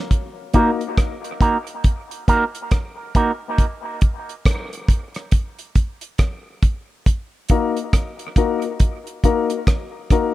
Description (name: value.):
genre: dub reggae.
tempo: 69 BPM.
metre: 4/4.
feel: swing 61% on 16ths.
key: Eb minor.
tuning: A4 = 441 Hz.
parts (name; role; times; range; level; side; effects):
damped 70s drum kit; drums; 0.1-10.3 s; hi-hat, kick drum, rim click; -17 LUFS; equal; none.
electric guitar with an envelope filter; accompaniment; 0.5-3.3 s; Bb3 to Bb4; -22 LUFS; right 3 dB; dub echo.
warm upright piano; stabs; 0.5-0.8, 7.5-10.3 s; Bb3 to Bb4; -23 LUFS; left 7 dB; dub echo.
room: small room ambience.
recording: none.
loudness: -18 LUFS.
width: side -16 dB against mid.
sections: 0.1-10.3 A section.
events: none.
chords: 0.1 Ebm; 3.6 N.C.; 7.1 Ebm.